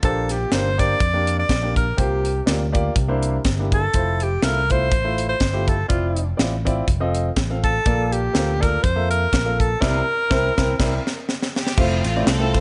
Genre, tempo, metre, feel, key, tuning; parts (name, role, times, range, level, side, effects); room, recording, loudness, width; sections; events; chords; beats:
uptempo gospel; 123 BPM; 4/4; swing 56% on 8ths; F major; A4 = 440 Hz
breathy alto saxophone; melody; 0.0-11.3 s; F4 to D5; -25 LUFS; equal
warm grand piano; accompaniment; 0.0-12.6 s; Bb2 to F5; -28 LUFS; equal
fingered electric bass; bass; 0.0-12.6 s; F1 to F2; -26 LUFS; equal
crisp fusion drum kit; drums; 0.0-12.6 s; crash cymbal, hi-hat, kick drum, ride cymbal, snare drum; -24 LUFS; equal
clear studio string section; melody; 11.6-12.6 s; A3 to C5; -27 LUFS; equal
little or no reverb; nothing above 10.4 kHz; -20 LUFS; mono
0.0-11.8 A section
band accent 9.8-11.8; drum fill 10.8-11.8; grand piano fill 10.8-11.8
0.0 Bb69; 2.0 C7sus4; 3.0 C9; 3.9 Fmaj7; 5.9 Dm9/F; 6.9 F7; 7.9 Bbmaj7; 9.8 C9; 11.8 Fmaj7
| 0.03 0.52 1.01 1.50 | 1.99 2.48 2.96 3.45 | 3.94 4.43 4.92 5.41 | 5.90 6.39 6.88 7.37 | 7.86 8.35 8.84 9.33 | 9.82 10.31 10.80 11.29 | 11.78 12.27